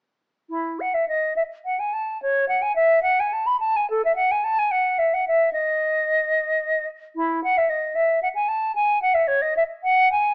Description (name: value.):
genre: classical, baroque-style fantasia for unaccompanied flute.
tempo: 73 BPM (dotted quarters).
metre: 12/8.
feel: rubato.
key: E major.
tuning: A4 = 440 Hz.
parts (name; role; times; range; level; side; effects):
silver concert flute; solo; 0.5-10.3 s; E4 to B5; -19 LUFS; equal; none.
room: light reverb.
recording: small speaker sound.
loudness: -19 LUFS.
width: side -32 dB against mid.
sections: 0.5-10.3 A section.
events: none.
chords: none.